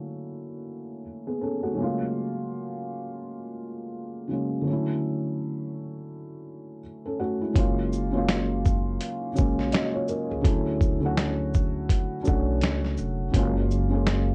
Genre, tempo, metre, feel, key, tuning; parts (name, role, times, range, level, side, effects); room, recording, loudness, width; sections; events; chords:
lo-fi hip hop; 83 BPM; 4/4; swing 60% on 16ths; A4 = 441 Hz
felt-muted upright piano; accompaniment; 0.0-14.3 s; C#3 to D#5; -30 LUFS; equal; low-pass filter
upright bass; bass; 7.6-14.3 s; E#1 to D2; -31 LUFS; equal
dusty soul sampler-style drum kit; drums; 7.6-14.3 s; hi-hat, kick drum, shaker, snare drum; -27 LUFS; equal
light reverb; cassette tape; -26 LUFS; mono
0.0-7.6 A section; 7.6-14.3 B section
filter sweep on felt piano 0.0-7.6
0.0 Dmaj9; 1.8 F#maj9; 4.7 Dmaj9; 7.6 F#maj9; 10.4 Dmaj9; 13.3 F#maj9